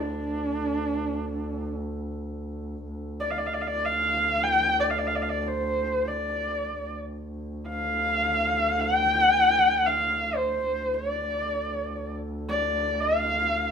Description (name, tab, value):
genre	mongolian traditional, Mongolian folk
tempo	free time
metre	none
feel	none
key	D yu mode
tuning	A4 = 441 Hz
part	warm horsehead fiddle	melody	0.0-13.7 s	D4 to G5	-24 LUFS	equal	none
part	muted double bass	drone	0.0-13.7 s	D2	-33 LUFS	equal	none
room	wet studio reverb, RT60 0.8 s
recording	band playing live in one room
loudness	-23 LUFS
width	side -7 dB against mid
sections	0.0-2.9 A section; 2.9-13.7 A section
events	none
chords	none